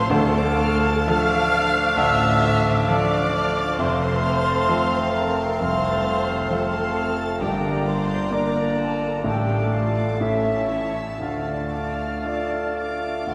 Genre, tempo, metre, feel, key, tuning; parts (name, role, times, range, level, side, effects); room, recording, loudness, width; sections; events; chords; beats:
classical, romantic movement for piano and orchestra; 65 BPM; 4/4; uneven beats, rubato; D minor; A4 = 440 Hz
clear concert grand piano; melody; 0.0-13.3 s; F1 to D5; -27 LUFS; equal
warm chamber violin section; melody; 0.0-13.3 s; A5 to D6; -41 LUFS; equal
bright silver concert flute; second line; 0.0-13.3 s; D5 to F6; -31 LUFS; equal
warm chamber violin section; second line; 0.0-13.3 s; C#5 to A6; -36 LUFS; equal
dark chamber viola section; accompaniment; 0.0-13.3 s; D4 to F5; -30 LUFS; equal
dark French horn section; sustained chords; 0.0-13.3 s; A3 to D4; -33 LUFS; equal
bright trumpet section; stabs; 0.0-13.3 s; D5 to F5; -32 LUFS; equal
warm clarinet; second line; 0.1-13.3 s; C4 to F4; -35 LUFS; equal
warm bassoon; accompaniment; 0.1-13.3 s; F3 to Bb3; -32 LUFS; equal
rich chamber cello section; bass; 0.1-13.3 s; C2 to D3; -35 LUFS; equal
warm chamber double bass section; bass; 0.1-13.3 s; F1 to D2; -33 LUFS; equal
timpani; percussion; 0.1-1.5 s; D3; -33 LUFS; equal
wet church reverb, RT60 3.2 s; -22 LUFS; mono
0.0-13.3 A section
0.1 Dm; 3.8 F; 7.4 Gm; 9.2 Dm/A; 10.2 A; 11.2 Dm
| 0.11 1.08 1.98 2.90 | 3.79 4.70 5.61 6.51 | 7.41 8.32 9.25 10.21 | 11.21 12.25 13.28